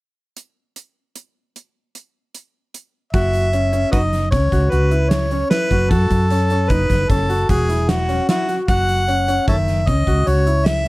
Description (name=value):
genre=progressive instrumental, band music in an uneven meter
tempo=152 BPM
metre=7/4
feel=straight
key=F# dorian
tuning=A4 = 440 Hz
part: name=gated 80s drum kit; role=drums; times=0.4-10.9 s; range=hi-hat, kick drum, snare drum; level=-22 LUFS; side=equal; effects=none
part: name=warm harmonica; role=melody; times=3.1-10.9 s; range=F#4 to F#5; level=-20 LUFS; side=equal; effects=none
part: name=clear concert grand piano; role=arpeggios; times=3.1-10.8 s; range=D#3 to F#4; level=-23 LUFS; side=left 1 dB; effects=none
part: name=woody fretless electric bass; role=bass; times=3.1-10.9 s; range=E1 to F#2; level=-18 LUFS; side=equal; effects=none
room=little or no reverb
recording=none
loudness=-15 LUFS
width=side -20 dB against mid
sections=0.4-3.1 A section; 3.1-10.9 B section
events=none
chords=0.4 N.C.; 3.1 F#7(no3)